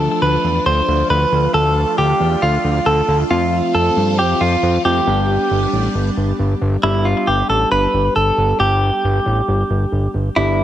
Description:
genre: synth-pop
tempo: 136 BPM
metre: 4/4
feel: straight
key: G mixolydian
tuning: A4 = 440 Hz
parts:
  - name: direct-recorded clean electric guitar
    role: melody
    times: 0.0-10.6 s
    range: E4 to C5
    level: -17 LUFS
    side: equal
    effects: ping-pong delay
  - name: warm analog keys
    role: accompaniment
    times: 0.0-10.6 s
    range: F3 to G4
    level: -23 LUFS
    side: left 1 dB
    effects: chorus
  - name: phased string machine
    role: sustained chords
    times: 0.0-6.8 s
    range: G3 to F4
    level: -25 LUFS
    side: equal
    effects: ensemble chorus, phaser
  - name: fat analog bass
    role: bass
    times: 0.0-10.6 s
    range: G1 to G2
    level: -18 LUFS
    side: equal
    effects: none
room: light reverb, digital ambience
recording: none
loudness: -14 LUFS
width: side -11 dB against mid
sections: 0.0-6.8 A section; 6.8-10.6 A section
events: none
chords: 0.0 Dm; 3.3 F; 5.1 G

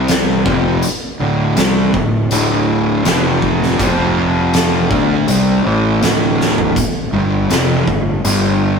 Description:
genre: stoner and doom metal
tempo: 81 BPM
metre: 4/4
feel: straight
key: D minor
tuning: A4 = 440 Hz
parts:
  - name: fuzz guitar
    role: riff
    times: 0.0-8.8 s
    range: D2 to D4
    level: -15 LUFS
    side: equal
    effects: distortion
  - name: fuzz fingered electric bass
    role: bass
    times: 0.0-8.8 s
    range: D1 to D2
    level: -19 LUFS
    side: left 1 dB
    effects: overdrive
  - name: oversized low-tuned drum kit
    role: drums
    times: 0.1-8.4 s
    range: hi-hat, kick drum, snare drum, toms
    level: -18 LUFS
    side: equal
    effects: none
room: light reverb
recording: rough rehearsal-room recording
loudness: -12 LUFS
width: side -6 dB against mid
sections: 0.0-8.8 A section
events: drum fill 6.4-6.8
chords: 0.5 Dm; 3.1 F5; 4.9 D5; 7.1 G5

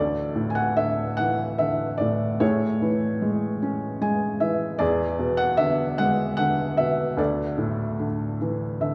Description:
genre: classical, lyrical solo piano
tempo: 49 BPM (dotted quarters)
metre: 6/8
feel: rubato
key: D lydian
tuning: A4 = 440 Hz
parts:
  - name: felt-muted upright piano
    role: solo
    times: 0.0-8.9 s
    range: D2 to G#5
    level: -24 LUFS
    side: equal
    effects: none
room: wet cathedral reverb, RT60 4.2 s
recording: recorded in a church or concert hall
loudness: -24 LUFS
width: mono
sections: 0.0-8.9 A section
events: felt piano fill 3.6-4.8, 8.4-8.9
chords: 0.0 Dsus2; 2.4 Amaj7; 4.8 E7; 7.2 Dsus2

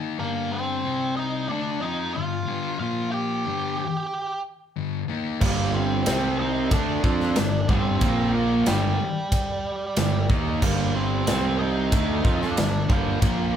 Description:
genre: quiet-loud alternative rock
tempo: 92 BPM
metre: 4/4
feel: straight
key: G minor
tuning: A4 = 440 Hz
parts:
  - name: thick fuzz guitar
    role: riff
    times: 0.0-13.6 s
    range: G2 to F4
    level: -28 LUFS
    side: left 5 dB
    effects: distortion
  - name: octave-fuzz lead guitar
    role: melody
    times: 0.2-13.6 s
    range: G3 to G5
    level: -28 LUFS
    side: right 2 dB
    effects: distortion
  - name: biting overdriven guitar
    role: riff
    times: 5.4-13.6 s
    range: G2 to F4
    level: -32 LUFS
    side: right 1 dB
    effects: none
  - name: overdriven electric guitar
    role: riff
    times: 5.4-13.6 s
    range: G2 to F4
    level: -28 LUFS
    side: right 7 dB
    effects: none
  - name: fuzz fingered electric bass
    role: bass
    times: 5.4-13.6 s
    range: G1 to F2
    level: -27 LUFS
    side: equal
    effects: overdrive
  - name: big rock drum kit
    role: drums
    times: 5.4-13.4 s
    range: crash cymbal, kick drum, ride cymbal, snare drum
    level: -25 LUFS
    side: equal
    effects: none
room: moderate large studio reverb, RT60 0.9 s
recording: band playing live in one room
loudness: -22 LUFS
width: side -9 dB against mid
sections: 0.0-13.6 A section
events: none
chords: 0.0 Gm; 0.9 C5; 1.5 G5; 2.8 Bb5; 3.5 Gm; 6.1 C5; 6.7 G5; 8.0 Bb5; 8.7 Gm; 11.3 C5; 11.9 Gm

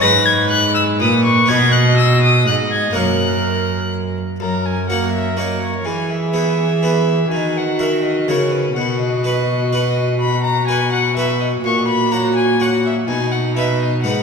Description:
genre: classical, renaissance-style consort dance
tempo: 124 BPM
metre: 3/4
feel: straight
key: F# mixolydian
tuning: A4 = 440 Hz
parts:
  - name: rich violin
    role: melody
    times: 0.0-14.2 s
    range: B4 to A#6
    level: -19 LUFS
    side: left 4 dB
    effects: none
  - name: warm viola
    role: second line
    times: 0.0-14.2 s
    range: D#4 to D#5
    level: -22 LUFS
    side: right 2 dB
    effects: none
  - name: harpsichord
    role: accompaniment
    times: 0.0-14.2 s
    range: F#2 to C#5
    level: -22 LUFS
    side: right 1 dB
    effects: none
  - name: rich cello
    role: bass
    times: 0.0-14.2 s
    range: F#2 to E3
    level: -19 LUFS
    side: right 1 dB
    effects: none
room: wet church reverb, RT60 2.9 s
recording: recorded in a church or concert hall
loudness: -14 LUFS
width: side -5 dB against mid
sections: 0.0-4.4 A section; 4.4-14.2 B section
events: none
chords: 0.0 G#m; 1.5 B; 2.9 F#; 5.9 E; 7.3 D#m; 8.8 B; 11.6 F#/A#; 13.1 B

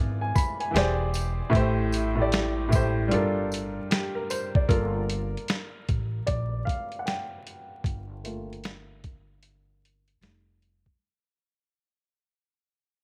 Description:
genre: lo-fi hip hop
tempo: 76 BPM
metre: 4/4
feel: swing 63% on 16ths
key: G dorian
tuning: A4 = 439 Hz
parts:
  - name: warm upright piano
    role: accompaniment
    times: 0.0-11.0 s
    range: A2 to B5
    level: -30 LUFS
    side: equal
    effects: cassette tape, low-pass filter
  - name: upright bass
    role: bass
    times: 0.0-10.9 s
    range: E1 to Bb1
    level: -33 LUFS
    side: equal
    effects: none
  - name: boom bap sampler-style drum kit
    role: drums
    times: 0.4-11.0 s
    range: hi-hat, kick drum, snare drum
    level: -29 LUFS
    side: equal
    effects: none
  - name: tambourine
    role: percussion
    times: 0.4-4.5 s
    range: none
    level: -44 LUFS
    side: equal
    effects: none
room: light reverb, studio reverb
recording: vinyl crackle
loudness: -27 LUFS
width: mono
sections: 0.0-4.7 A section; 4.7-11.0 B section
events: fade-out 4.7-11.0; upright piano solo 4.7-11.0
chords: 0.0 E7b9; 0.7 E7alt; 1.5 Am7; 3.1 Gm9; 10.2 F9

